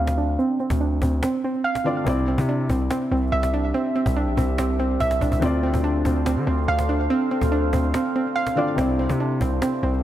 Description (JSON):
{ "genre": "hip hop, trap", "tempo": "143 BPM", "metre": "4/4", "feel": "half-time", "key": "D minor", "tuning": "A4 = 439 Hz", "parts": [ { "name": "dark grand piano", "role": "accompaniment", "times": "0.0-10.0 s", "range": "C3 to D5", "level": "-29 LUFS", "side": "left 4 dB", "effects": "low-pass filter" }, { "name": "soft round pluck", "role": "arpeggios", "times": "0.0-10.0 s", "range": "C4 to F5", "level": "-23 LUFS", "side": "right 2 dB", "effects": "chorus, low-pass filter, digital delay" }, { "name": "distorted 808-style bass", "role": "bass", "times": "0.0-10.0 s", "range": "Bb1 to D3", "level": "-23 LUFS", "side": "equal", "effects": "distortion" }, { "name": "cajon", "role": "drums", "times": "0.1-10.0 s", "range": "none", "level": "-29 LUFS", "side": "equal", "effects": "none" }, { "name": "deep dark ambient pad", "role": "sustained chords", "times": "3.0-10.0 s", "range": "D4 to F5", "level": "-30 LUFS", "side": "equal", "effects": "chorus, built-in reverb" } ], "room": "light reverb, studio reverb", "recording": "none", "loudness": "-20 LUFS", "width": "side -12 dB against mid", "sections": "0.0-10.0 A section", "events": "filter sweep 0.0-2.1; kick muted 1.2-2.1, 7.9-8.8", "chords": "0.0 Dm7; 2.1 Cadd9; 5.4 Dm7; 8.8 Cadd9" }